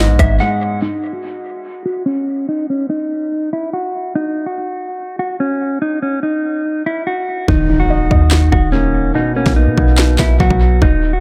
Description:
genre	hip hop, trap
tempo	144 BPM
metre	4/4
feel	half-time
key	Eb phrygian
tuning	A4 = 436 Hz
part	mellow electric guitar	melody	0.0-11.2 s	Db4 to Gb5	-20 LUFS	equal	spring reverb, low-pass filter, dub echo
part	felt-muted upright piano	accompaniment	0.0-0.8, 7.5-10.8 s	Ab2 to Eb5	-22 LUFS	equal	low-pass filter, dub echo
part	clean 808-style bass	bass	0.0-0.4, 7.5-11.2 s	Eb1 to B2	-16 LUFS	equal	none
part	trap drum kit	drums	0.2-0.3, 7.5-10.9 s	handclaps, hi-hat, kick drum, rim click, snare drum	-18 LUFS	equal	overdrive, dub echo
part	impact	sound effects	7.6-9.2 s	none	-27 LUFS	equal	none
room	little or no reverb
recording	echo-heavy mix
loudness	-16 LUFS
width	mono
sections	0.8-7.5 A section; 7.5-11.2 B section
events	break 0.4-0.8; filter sweep on clean electric guitar 0.8-7.5; hi-hats muted 7.5-11.2; impact 7.5-9.2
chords	0.0 Abm7; 0.8 N.C.; 7.5 Ebm; 9.2 Bmaj7

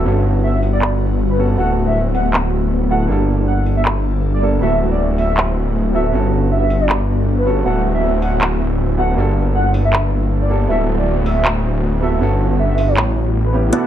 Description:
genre	future bass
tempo	158 BPM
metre	4/4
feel	swing 55% on 16ths, half-time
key	D major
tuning	A4 = 440 Hz
part	warm velvety synth lead	melody	0.0-13.9 s	B4 to F#5	-22 LUFS	equal	chorus, ping-pong delay
part	warm baby grand piano	accompaniment	0.0-13.9 s	A3 to A4	-24 LUFS	right 4 dB	dub echo
part	ethereal airy pad	sustained chords	0.0-13.9 s	D2 to A4	-25 LUFS	left 1 dB	ensemble chorus, built-in reverb
part	wide detuned saw bass	bass	0.0-13.7 s	D1 to A1	-16 LUFS	equal	chorus
part	trap drum kit	drums	0.6-13.8 s	handclaps, hi-hat	-20 LUFS	equal	low-pass filter on hats, low-pass filter on snare
part	dense compressed supersaw	riff	13.7-13.9 s	B3 to F#5	-15 LUFS	right 2 dB	cassette tape, low-pass filter
room	little or no reverb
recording	none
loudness	-14 LUFS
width	side -10 dB against mid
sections	0.0-13.7 A section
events	none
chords	0.1 Gmaj9#11; 1.6 D69; 3.1 Gmadd9; 4.6 D69; 6.1 Gmaj9#11; 7.7 D69; 9.2 Gmadd9; 10.7 D69; 12.2 Gmaj9#11; 13.0 A7

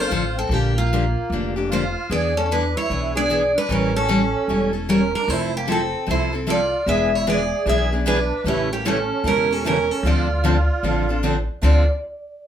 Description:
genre	acoustic string swing (jazz manouche)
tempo	151 BPM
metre	4/4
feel	swing 64% on 8ths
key	D minor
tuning	A4 = 438 Hz
part	picked steel-string acoustic guitar	melody	0.0-11.9 s	F4 to E5	-23 LUFS	right 1 dB	slapback echo
part	musette accordion	second line	0.0-11.9 s	Bb3 to G#4	-27 LUFS	right 5 dB	slapback echo
part	picked steel-string acoustic guitar	accompaniment	0.0-11.8 s	C#3 to A4	-24 LUFS	left 3 dB	none
part	upright bass	bass	0.0-11.9 s	E1 to E2	-23 LUFS	equal	none
part	picked steel-string acoustic guitar	accompaniment	5.3-11.8 s	D3 to B4	-28 LUFS	right 4 dB	none
room	moderate studio reverb, RT60 0.5 s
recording	heard from further back in the room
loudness	-18 LUFS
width	side -9 dB against mid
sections	0.0-11.6 A section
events	none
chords	0.0 Dm7; 0.5 Bb6; 2.1 E7; 3.7 A7; 5.3 Fmaj7; 6.9 E7; 8.5 A7; 10.0 Dm7

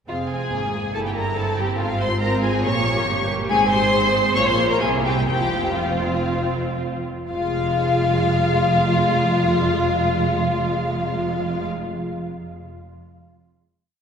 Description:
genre	quick classical-period movement for string orchestra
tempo	114-142 BPM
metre	4/4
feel	straight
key	F minor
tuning	A4 = 437 Hz
part	dark symphonic violin section	melody	0.1-11.7 s	F5 to Db6	-25 LUFS	left 3 dB	none
part	rich symphonic violin section	second line	0.1-11.7 s	F4 to Db5	-24 LUFS	left 1 dB	none
part	rich symphonic viola section	accompaniment	0.1-11.7 s	Ab3 to Ab4	-25 LUFS	left 1 dB	none
part	warm symphonic cello section	bass	0.1-11.7 s	F2 to C3	-27 LUFS	right 3 dB	none
part	warm symphonic double bass section	bass	0.1-11.7 s	F1 to C2	-27 LUFS	right 2 dB	none
room	wet church reverb, RT60 3.8 s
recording	minimal, uncompressed stereo recording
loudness	-18 LUFS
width	side -7 dB against mid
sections	0.1-7.3 A section; 7.3-11.5 final chord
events	slowing down 2.6-7.3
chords	0.1 Fm; 0.9 Edim/G; 1.8 Fm/Ab; 2.6 Gdim/Bb; 3.5 Abmaj7; 4.4 Bb5; 4.8 C7; 5.3 F5; 7.3 Fm

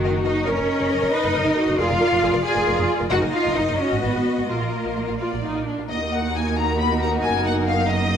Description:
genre	classical, dramatic, fast romantic movement for symphony orchestra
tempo	85-92 BPM (dotted quarters)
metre	6/8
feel	straight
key	Eb minor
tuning	A4 = 440 Hz
part	warm studio violin section	melody	0.0-8.2 s	D#4 to Cb6	-26 LUFS	left 5 dB	none
part	rich symphonic violin section	second line	0.0-8.2 s	F4 to D#5	-28 LUFS	left 2 dB	none
part	rich symphonic viola section	accompaniment	0.0-8.2 s	Bb3 to Cb5	-25 LUFS	right 1 dB	none
part	clear symphonic cello section	bass	0.0-8.2 s	Eb2 to Ab4	-24 LUFS	right 1 dB	none
part	rich studio double bass section	bass	0.0-8.2 s	F1 to Eb2	-27 LUFS	right 2 dB	none
room	moderate concert hall reverb, RT60 1.9 s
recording	none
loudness	-19 LUFS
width	side -8 dB against mid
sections	0.0-5.9 A section; 5.9-8.2 B section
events	none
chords	0.5 Ebm/Gb; 1.8 Bb7/F; 3.1 Ebm/Gb; 3.8 Abm7; 4.5 Bbsus4; 5.2 Bb; 5.9 Ebm; 7.2 Ebm/Gb

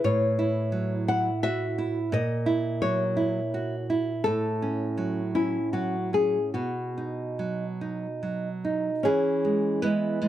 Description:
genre	romantic duo for nylon-string guitar and classical guitar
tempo	70-89 BPM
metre	3/4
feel	rubato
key	unclear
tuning	A4 = 440 Hz
part	nylon-string guitar	melody	0.0-10.3 s	A3 to F#5	-28 LUFS	left 4 dB	none
part	nylon-string guitar	accompaniment	0.0-10.3 s	A2 to B4	-26 LUFS	right 3 dB	none
room	little or no reverb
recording	dry, close 1970s-style studio recording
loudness	-25 LUFS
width	side -12 dB against mid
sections	0.0-9.0 A section; 9.0-10.3 B section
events	none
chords	0.0 F#m7/A; 2.1 F#7/A#; 4.3 F#m/A; 6.5 B; 9.0 E

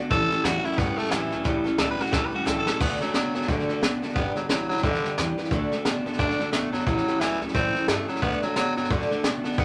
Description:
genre	rockabilly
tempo	178 BPM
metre	4/4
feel	swing 60% on 8ths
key	D major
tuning	A4 = 440 Hz
part	picked steel-string acoustic guitar	accompaniment	0.0-9.6 s	A2 to B4	-33 LUFS	equal	none
part	electric guitar through a small old amp	riff	0.0-9.6 s	G2 to B3	-32 LUFS	equal	none
part	raspy tenor saxophone	melody	0.1-9.6 s	D3 to B4	-30 LUFS	equal	none
part	upright bass	bass	0.1-9.6 s	F#1 to G2	-39 LUFS	equal	none
part	jazz brush drum kit	drums	0.1-9.6 s	crash cymbal, hi-hat, kick drum, snare drum	-30 LUFS	equal	none
room	moderate small room reverb, RT60 0.5 s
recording	none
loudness	-25 LUFS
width	mono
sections	0.0-2.8 A section; 2.8-9.6 B section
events	drum fill 2.1-2.8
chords	0.1 A7; 2.8 D; 4.2 G; 5.5 D; 6.9 A7; 8.2 D

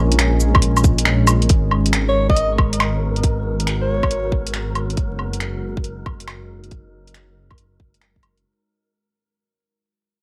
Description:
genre	future garage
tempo	138 BPM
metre	4/4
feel	swing 67% on 16ths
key	G# dorian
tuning	A4 = 440 Hz
part	deep dark ambient pad	sustained chords	0.0-8.5 s	G#3 to C#5	-28 LUFS	equal	chorus, built-in reverb, sidechain pumping
part	dark detuned saw bass	bass	0.0-8.4 s	F#1 to A#1	-23 LUFS	equal	sidechain pumping
part	garage drum kit	drums	0.1-8.4 s	cabasa, finger snaps, hi-hat, woodblock	-24 LUFS	equal	none
part	electronic kick drum	drums	0.6-8.2 s	none	-20 LUFS	equal	none
part	wind-like tuned noise texture	texture	2.1-8.5 s	A#4	-36 LUFS	equal	built-in reverb
part	clear alto saxophone	melody	2.1-4.4 s	C#5 to D#5	-26 LUFS	equal	tape echo
room	light reverb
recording	dry, gritty hardware recording, transformer saturation, vinyl crackle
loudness	-18 LUFS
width	mono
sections	0.0-1.5 A section; 1.5-8.4 B section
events	kick drops out 1.1-1.5; fade-out 1.5-8.4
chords	0.0 A#m7; 1.5 G#m11; 5.0 F#69

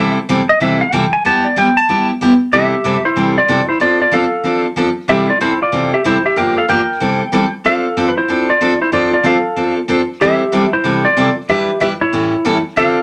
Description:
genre	country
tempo	188 BPM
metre	4/4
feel	swing 62% on 8ths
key	C major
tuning	A4 = 441 Hz
part	clean lap steel guitar	melody	0.0-13.0 s	E4 to A5	-16 LUFS	equal	none
part	picked steel-string acoustic guitar	accompaniment	0.0-13.0 s	G2 to B4	-17 LUFS	equal	none
room	wet studio ambience, RT60 0.5 s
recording	none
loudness	-14 LUFS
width	mono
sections	0.0-2.5 A section; 2.5-13.0 B section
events	electric slide guitar solo 0.0-2.5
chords	0.0 C6; 1.2 G6; 2.5 C6; 3.8 F6; 5.1 C6; 6.4 Gm7; 7.0 C6; 7.6 F6; 10.2 C6; 11.5 Em7; 12.1 A7

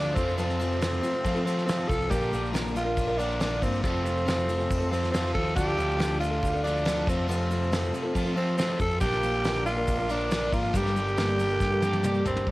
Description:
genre	folk rock and heartland rock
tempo	139 BPM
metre	4/4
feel	straight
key	G minor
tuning	A4 = 441 Hz
part	growling tenor saxophone	melody	0.0-12.5 s	C4 to A4	-29 LUFS	equal	cassette tape, analog delay
part	picked twelve-string acoustic guitar	accompaniment	0.0-12.5 s	G2 to Bb4	-31 LUFS	left 1 dB	none
part	mellow tonewheel organ	sustained chords	0.0-12.5 s	A4 to D6	-44 LUFS	equal	none
part	overdriven electric guitar	riff	0.0-12.5 s	F2 to G4	-34 LUFS	right 1 dB	none
part	picked electric bass	bass	0.0-12.5 s	F1 to F3	-31 LUFS	equal	none
part	soft brush drum kit	drums	0.2-12.5 s	crash cymbal, hi-hat, kick drum, snare drum, toms	-31 LUFS	equal	cassette tape
part	tube shaker	percussion	0.2-12.4 s	none	-50 LUFS	right 6 dB	none
room	light reverb, small room ambience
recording	home recording on cassette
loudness	-24 LUFS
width	side -18 dB against mid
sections	0.0-12.5 A section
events	drum fill 11.6-12.5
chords	0.2 F; 2.1 Bb; 3.8 F; 5.6 Dm; 7.1 F; 9.0 Bb; 10.7 Gmadd9

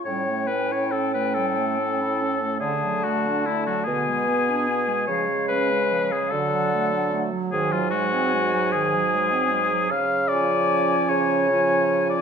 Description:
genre	classical, slow romantic movement for wind quintet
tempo	46-52 BPM (dotted quarters)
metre	6/8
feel	rubato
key	unclear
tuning	A4 = 437 Hz
part	silver concert flute	melody	0.0-12.2 s	E#5 to A5	-30 LUFS	left 8 dB	none
part	warm oboe	second line	0.0-12.2 s	E4 to E#5	-24 LUFS	left 4 dB	none
part	clear French horn	accompaniment	0.0-12.2 s	E#3 to C#4	-30 LUFS	right 1 dB	none
part	warm clarinet	accompaniment	0.1-12.2 s	D3 to E4	-30 LUFS	right 9 dB	none
part	mellow bassoon	bass	0.1-12.1 s	G#2 to D3	-26 LUFS	right 4 dB	none
room	moderate recital hall reverb, RT60 1.3 s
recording	none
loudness	-20 LUFS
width	side -6 dB against mid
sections	0.1-12.2 A section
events	none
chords	0.1 A7; 2.6 D; 3.9 G#dim/B; 5.1 C#; 6.3 D; 7.5 G#7; 9.9 C#

